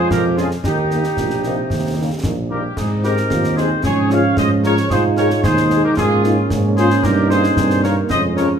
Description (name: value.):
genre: military-style march for wind band.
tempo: 113 BPM.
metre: 2/4.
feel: straight.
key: unclear.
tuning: A4 = 440 Hz.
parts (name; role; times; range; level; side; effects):
mellow trumpet section; melody; 0.0-8.5 s; G4 to F5; -22 LUFS; equal; none.
mellow euphonium; second line; 0.0-8.6 s; Bb3 to G4; -22 LUFS; right 3 dB; none.
warm woodwind section; second line; 0.0-8.5 s; Eb4 to Db5; -26 LUFS; left 4 dB; none.
clear trombone section; sustained chords; 0.0-8.6 s; Bb2 to Eb4; -23 LUFS; right 3 dB; none.
mellow tuba; bass; 0.0-8.5 s; Bb1 to Ab2; -20 LUFS; right 1 dB; none.
concert snare drum, concert bass drum and clash cymbals; drums; 0.1-8.5 s; none; -24 LUFS; left 1 dB; none.
dark French horn section; accompaniment; 0.4-8.5 s; F3 to Ab4; -25 LUFS; left 5 dB; none.
room: wet large studio reverb, RT60 1.5 s.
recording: minimal, uncompressed stereo recording.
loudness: -14 LUFS.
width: side -7 dB against mid.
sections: 0.0-8.6 A section.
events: none.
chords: 0.0 Db/F; 0.6 Eb; 2.8 Ab; 3.8 Db/Ab; 4.9 Ab5; 6.0 Bbm7/Ab; 7.0 Eb/G.